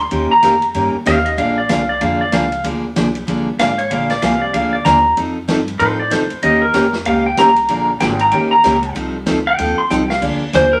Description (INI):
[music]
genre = country, western swing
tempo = 190 BPM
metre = 4/4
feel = swing 61% on 8ths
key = Bb mixolydian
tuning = A4 = 439 Hz
[part]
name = clean lap steel guitar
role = second line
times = 0.0-10.2 s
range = Bb4 to C6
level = -17 LUFS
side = equal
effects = none
[part]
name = upright bass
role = bass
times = 0.0-10.8 s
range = Ab1 to A2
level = -28 LUFS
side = equal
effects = none
[part]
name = picked steel-string acoustic guitar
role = accompaniment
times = 0.1-10.6 s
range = D3 to Bb4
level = -20 LUFS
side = equal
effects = none
[part]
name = swinging big-band drum kit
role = drums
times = 0.1-10.6 s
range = crash cymbal, hi-hat, kick drum, ride cymbal, snare drum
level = -29 LUFS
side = equal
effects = none
[part]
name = pedal steel guitar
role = melody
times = 10.6-10.8 s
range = Bb4 to C5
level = -13 LUFS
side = equal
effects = none
[sound]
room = wet studio reverb, RT60 0.6 s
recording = none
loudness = -16 LUFS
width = mono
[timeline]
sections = 0.0-10.2 A section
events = electric slide guitar solo 0.0-10.2; drum fill 9.9-10.2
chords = 0.1 Eb9; 1.4 Bb9; 5.2 F9; 6.4 Eb9; 7.7 Bb7; 8.3 Eb7; 9.0 F9; 10.2 Bb7